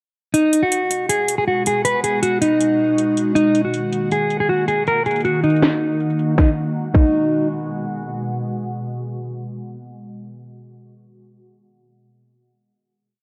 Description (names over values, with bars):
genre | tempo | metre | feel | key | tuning
hip hop, trap | 159 BPM | 4/4 | half-time | G# minor | A4 = 437 Hz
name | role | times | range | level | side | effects
mellow electric guitar | melody | 0.3-7.5 s | D#4 to B4 | -20 LUFS | equal | spring reverb, digital delay
ethereal airy pad | sustained chords | 1.2-10.2 s | B2 to F#4 | -27 LUFS | equal | ensemble chorus, built-in reverb, phaser
trap drum kit | drums | 0.3-7.1 s | crash cymbal, hi-hat, kick drum, snare drum | -21 LUFS | equal | overdrive
room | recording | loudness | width
light reverb | dark, warm production, low-pass filter | -19 LUFS | mono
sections
0.3-6.4 breakdown; 6.4-9.4 final chord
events
filter sweep 0.3-6.4; kick muted 4.9-6.4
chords
0.3 G#m7; 3.4 D#m; 6.4 G#m7